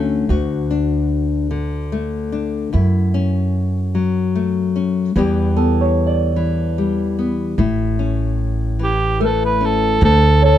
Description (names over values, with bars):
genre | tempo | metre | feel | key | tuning
acoustic folk-pop ballad | 49 BPM (dotted quarters) | 6/8 | straight | D major | A4 = 441 Hz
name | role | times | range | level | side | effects
nylon-string guitar | accompaniment | 0.0-10.6 s | D2 to G4 | -20 LUFS | left 5 dB | none
upright bass | bass | 0.0-10.6 s | A1 to F#2 | -19 LUFS | right 1 dB | none
electric guitar through a small old amp | arpeggios | 5.6-10.6 s | A4 to D5 | -22 LUFS | right 1 dB | harmonic tremolo
warm cor anglais | melody | 8.8-10.6 s | G4 to B4 | -17 LUFS | right 2 dB | none
room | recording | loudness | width
little or no reverb | dark, warm production | -16 LUFS | side -11 dB against mid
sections
0.3-10.0 A section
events
none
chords
0.3 D; 2.7 F#m7; 5.2 Em; 7.6 A; 10.0 Bm9/D